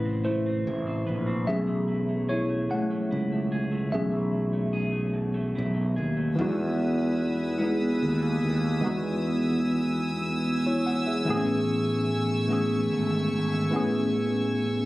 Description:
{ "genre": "slow six-eight R&B", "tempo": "49 BPM (dotted quarters)", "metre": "6/8", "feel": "straight", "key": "E major", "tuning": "A4 = 439 Hz", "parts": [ { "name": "electric guitar through a small old amp", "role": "second line", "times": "0.0-7.0 s", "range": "B2 to B4", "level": "-36 LUFS", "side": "right 2 dB", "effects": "spring reverb" }, { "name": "tine electric piano", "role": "accompaniment", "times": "0.0-14.9 s", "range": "C3 to F#5", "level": "-27 LUFS", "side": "equal", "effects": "medium stereo tremolo" }, { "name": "sustaining fretless electric bass", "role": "bass", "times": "0.0-14.9 s", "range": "G#1 to E2", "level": "-28 LUFS", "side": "equal", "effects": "none" }, { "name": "dark studio string section", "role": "sustained chords", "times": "6.4-14.9 s", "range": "A3 to E6", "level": "-34 LUFS", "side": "equal", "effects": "none" } ], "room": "light reverb", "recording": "recorded on a phone in the room, club reverb, compression", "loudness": "-24 LUFS", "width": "side -18 dB against mid", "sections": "0.0-6.4 A section; 6.4-14.9 B section", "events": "tine electric piano solo 0.0-6.4", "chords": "0.0 Amadd9; 1.5 B13sus4; 6.4 Emaj7; 11.3 Amaj7" }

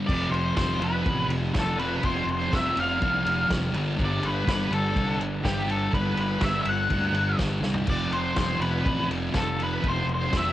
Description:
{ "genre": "garage rock duo or trio", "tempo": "123 BPM", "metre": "4/4", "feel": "straight", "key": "unclear", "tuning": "A4 = 440 Hz", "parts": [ { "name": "thick fuzz guitar", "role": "riff", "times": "0.0-10.5 s", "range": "F2 to G3", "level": "-27 LUFS", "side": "right 1 dB", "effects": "distortion" }, { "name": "octave-fuzz lead guitar", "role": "melody", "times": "0.1-10.5 s", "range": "G4 to F#5", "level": "-28 LUFS", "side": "left 1 dB", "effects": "distortion, cassette tape" }, { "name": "fuzz fingered electric bass", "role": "bass", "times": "0.1-10.5 s", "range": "F1 to D2", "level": "-32 LUFS", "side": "equal", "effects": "overdrive, tube saturation" }, { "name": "vintage drum kit", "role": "drums", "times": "0.1-10.4 s", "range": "crash cymbal, kick drum, ride cymbal, snare drum, toms", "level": "-30 LUFS", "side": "equal", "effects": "cassette tape" } ], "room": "light reverb", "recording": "home recording on cassette", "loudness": "-23 LUFS", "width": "side -14 dB against mid", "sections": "0.1-10.5 A section", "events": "drum fill 7.6", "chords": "0.1 F5; 3.7 G5; 7.9 F5" }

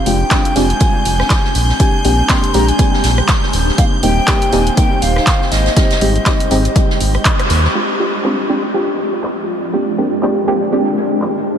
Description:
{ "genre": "deep house", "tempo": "121 BPM", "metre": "4/4", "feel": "swing 57% on 16ths", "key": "unclear", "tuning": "A4 = 442 Hz", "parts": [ { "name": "breathy mellow concert flute", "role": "melody", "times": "0.0-7.3 s", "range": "Eb5 to C6", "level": "-22 LUFS", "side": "left 1 dB", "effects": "tape echo" }, { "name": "granular cloud pad", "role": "texture", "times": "0.0-11.6 s", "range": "Ab3 to D5", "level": "-24 LUFS", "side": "equal", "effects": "built-in reverb, analog chorus, sidechain pumping" }, { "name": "string machine, violins", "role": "texture", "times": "0.0-7.8 s", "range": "G6", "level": "-27 LUFS", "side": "equal", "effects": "ensemble chorus" }, { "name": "deep mellow chord stab", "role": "stabs", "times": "0.1-11.5 s", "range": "G3 to G4", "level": "-17 LUFS", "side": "equal", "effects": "chorus, sidechain pumping, tape echo" }, { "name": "round analog bass", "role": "bass", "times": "0.1-7.7 s", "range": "Eb1 to Eb2", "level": "-15 LUFS", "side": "equal", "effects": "tube saturation" }, { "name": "deep house drum kit", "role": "drums", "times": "0.1-11.3 s", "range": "crash cymbal, handclaps, hi-hat, rim click", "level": "-21 LUFS", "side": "equal", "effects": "overdrive, low-pass filter on hats, studio reverb, low-pass filter on snare, low-pass filter on cymbals" }, { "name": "soft-mallet drum kit", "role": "drums", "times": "0.1-11.6 s", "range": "hi-hat, snare drum", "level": "-26 LUFS", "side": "right 2 dB", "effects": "sidechain pumping on hats, high-pass filter on hats, low-pass filter on hats, studio reverb, high-pass filter on snare, low-pass filter on snare, high-pass filter on room, low-pass filter on room" }, { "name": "electronic kick drum", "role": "drums", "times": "0.3-7.4 s", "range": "none", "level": "-15 LUFS", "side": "equal", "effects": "overdrive, studio reverb" } ], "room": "moderate huge ambient reverb, RT60 8.4 s", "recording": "dreamy mix soaked in reverb", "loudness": "-12 LUFS", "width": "side -8 dB against mid", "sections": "0.0-7.7 A section; 7.7-11.6 B section", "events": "band accent 7.3; filter sweep on synth stab 7.7-11.6", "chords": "0.0 Fm69; 1.6 Bb13; 3.5 Eb6; 5.5 Abmaj7; 7.7 Fm69; 9.5 Bb13" }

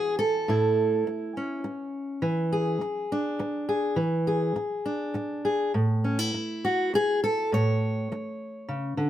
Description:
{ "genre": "folk, solo fingerstyle acoustic guitar", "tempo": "103 BPM", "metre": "3/4", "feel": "rubato", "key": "A major", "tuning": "A4 = 440 Hz", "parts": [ { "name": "fingerpicked steel-string acoustic guitar", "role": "solo", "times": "0.0-9.1 s", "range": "A2 to C#5", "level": "-25 LUFS", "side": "equal", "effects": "none" } ], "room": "light reverb", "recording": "none", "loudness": "-24 LUFS", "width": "side -12 dB against mid", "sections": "0.0-9.1 A section", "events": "none", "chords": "0.0 A; 2.2 E7; 5.8 A" }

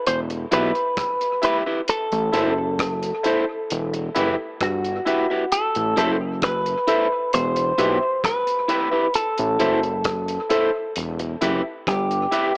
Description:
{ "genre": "roots reggae", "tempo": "66 BPM", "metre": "4/4", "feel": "straight", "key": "E minor", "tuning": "A4 = 440 Hz", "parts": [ { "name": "electric guitar with an envelope filter", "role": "melody", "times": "0.0-12.6 s", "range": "F#4 to C5", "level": "-22 LUFS", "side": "equal", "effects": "tape echo" }, { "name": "fat analog bass", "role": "bass", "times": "0.1-12.3 s", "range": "E1 to B1", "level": "-25 LUFS", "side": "equal", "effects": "none" }, { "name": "cloth-damped thuddy drum kit", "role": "drums", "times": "0.1-12.5 s", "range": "hi-hat, kick drum, rim click", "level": "-29 LUFS", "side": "equal", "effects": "dub echo" }, { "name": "electric guitar at the edge of break-up", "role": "accompaniment", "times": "0.3-12.5 s", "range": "E4 to E5", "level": "-25 LUFS", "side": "equal", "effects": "none" }, { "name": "clear concert grand piano", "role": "stabs", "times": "0.5-12.5 s", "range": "E4 to E5", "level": "-27 LUFS", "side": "left 1 dB", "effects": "none" } ], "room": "moderate spring reverb, RT60 2.6 s", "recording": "echo-heavy mix, cassette tape, small speaker sound", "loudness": "-19 LUFS", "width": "side -30 dB against mid", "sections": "0.0-12.6 A section", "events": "none", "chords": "0.1 Em; 1.9 Am; 3.7 Em; 5.5 Am; 7.3 Em; 9.1 Am; 11.0 Em" }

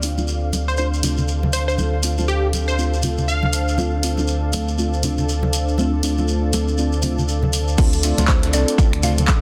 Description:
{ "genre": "deep house", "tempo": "120 BPM", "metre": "4/4", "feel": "swing 60% on 16ths", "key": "D minor", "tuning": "A4 = 440 Hz", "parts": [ { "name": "hollow soft pad", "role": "sustained chords", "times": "0.1-9.4 s", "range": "C4 to F5", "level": "-32 LUFS", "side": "equal", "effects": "chorus, vintage 12-bit sampler grit, sidechain pumping" }, { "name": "deep mellow chord stab", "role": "stabs", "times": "0.0-9.2 s", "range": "A3 to A4", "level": "-28 LUFS", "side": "equal", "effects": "chorus, phaser, sidechain pumping, delay" }, { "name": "round analog bass", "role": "bass", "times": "0.0-9.4 s", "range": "A1 to D2", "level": "-23 LUFS", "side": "equal", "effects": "tube saturation, sidechain pumping" }, { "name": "punchy analog drum machine", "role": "drums", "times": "0.0-9.4 s", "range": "crash cymbal, finger snaps, handclaps, hi-hat", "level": "-27 LUFS", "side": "equal", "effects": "soft clipping on snare" }, { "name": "shekere", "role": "percussion", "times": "0.0-9.4 s", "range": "none", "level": "-32 LUFS", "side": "equal", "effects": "none" }, { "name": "ethereal airy pad", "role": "texture", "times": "0.0-9.4 s", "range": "C4 to F5", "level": "-33 LUFS", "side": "equal", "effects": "ensemble chorus, built-in reverb, sidechain pumping" }, { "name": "congas", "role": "percussion", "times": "0.2-9.3 s", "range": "none", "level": "-28 LUFS", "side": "equal", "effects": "sidechain pumping on perc" }, { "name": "plucky unison lead", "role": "melody", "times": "0.7-3.8 s", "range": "G4 to F5", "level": "-28 LUFS", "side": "equal", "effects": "phaser, dub echo" }, { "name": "dusty soul sampler-style drum kit", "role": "drums", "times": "7.8-9.4 s", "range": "hi-hat, snare drum", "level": "-34 LUFS", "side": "equal", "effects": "overdrive, high-pass filter on snare, sidechain pumping on hats, high-pass filter on hats, high-pass filter on room" }, { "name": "electronic kick drum", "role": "drums", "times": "7.8-9.4 s", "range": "none", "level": "-18 LUFS", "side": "equal", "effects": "none" }, { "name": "mallet-like synth pluck", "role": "melody", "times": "8.3-9.4 s", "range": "C5 to F5", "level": "-30 LUFS", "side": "equal", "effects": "chorus, delay" } ], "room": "light reverb", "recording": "dense, heavily limited modern master", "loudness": "-20 LUFS", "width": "mono", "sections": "0.0-7.8 A section; 7.8-9.4 B section", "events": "filter sweep on synth stab 0.0-7.8; drop 7.8-9.4", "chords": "0.0 Dm7" }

